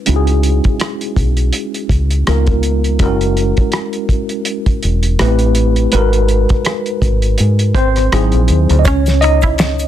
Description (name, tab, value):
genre	R&B, neo-soul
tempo	82 BPM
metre	4/4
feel	swing 57% on 16ths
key	C# dorian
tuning	A4 = 438 Hz
part	tine electric piano	accompaniment	0.0-9.9 s	F#3 to D#5	-17 LUFS	equal	overdrive, fast stereo tremolo, low-pass filter
part	deep dub fingered electric bass	bass	0.1-9.9 s	E1 to G#2	-13 LUFS	equal	none
part	cloth-damped thuddy drum kit	drums	0.1-9.9 s	finger snaps, hi-hat, kick drum, rim click, snare drum	-17 LUFS	equal	soft clipping on snare
part	semi-hollow electric guitar	second line	8.9-9.6 s	C#4 to E4	-20 LUFS	right 9 dB	none
part	egg shaker and finger snaps	percussion	8.9-9.9 s	none	-29 LUFS	left 6 dB	none
room	little or no reverb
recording	dense, heavily limited modern master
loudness	-12 LUFS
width	side -11 dB against mid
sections	0.0-8.8 A section; 8.8-9.9 B section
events	filter sweep on tine electric piano 0.0-8.8; tine electric piano solo 8.8-9.9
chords	0.0 C#m7; 2.3 C#13; 3.0 F#9; 5.2 Am9; 5.9 G#m9; 8.1 G#7b13; 8.8 N.C.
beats	| 0.07 0.80 1.53 2.26 | 3.00 3.73 4.46 5.19 | 5.92 6.66 7.39 8.12 | 8.85 9.58